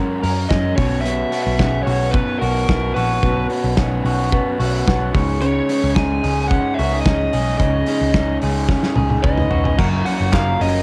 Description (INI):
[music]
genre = jangly indie pop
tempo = 110 BPM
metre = 4/4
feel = straight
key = unclear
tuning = A4 = 440 Hz
[part]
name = raw garage guitar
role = accompaniment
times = 0.0-10.8 s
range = F#2 to A#4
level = -31 LUFS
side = equal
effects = overdrive, cassette tape
[part]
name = electric guitar through a small old amp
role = arpeggios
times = 0.0-10.8 s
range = B2 to A#4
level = -24 LUFS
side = equal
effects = cassette tape
[part]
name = vintage muted picked electric bass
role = bass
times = 0.0-10.8 s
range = E1 to F#2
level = -24 LUFS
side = equal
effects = none
[part]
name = loose indie drum kit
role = drums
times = 0.2-10.7 s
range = crash cymbal, hi-hat, kick drum, snare drum, toms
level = -24 LUFS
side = equal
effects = cassette tape
[part]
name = biting lead guitar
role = melody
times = 0.5-10.8 s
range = A#4 to G#5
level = -26 LUFS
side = equal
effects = overdrive, cassette tape
[part]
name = combo organ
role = accompaniment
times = 1.0-10.8 s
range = B3 to C#6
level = -30 LUFS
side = equal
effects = spring reverb, cassette tape
[part]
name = group handclap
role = percussion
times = 10.3-10.5 s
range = none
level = -32 LUFS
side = equal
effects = none
[sound]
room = light reverb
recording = home recording on cassette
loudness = -18 LUFS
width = mono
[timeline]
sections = 0.0-9.8 A section; 9.8-10.8 B section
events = transistor combo organ fill 4.3-5.4; drum fill 8.7-9.8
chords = 0.0 F#add9; 0.8 Bsus2; 5.1 C#sus2; 9.8 F#maj7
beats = 0.51 | 1.05 1.60 2.14 2.69 | 3.23 3.78 4.33 4.87 | 5.42 5.96 6.51 7.06 | 7.60 8.15 8.69 9.24 | 9.79 10.33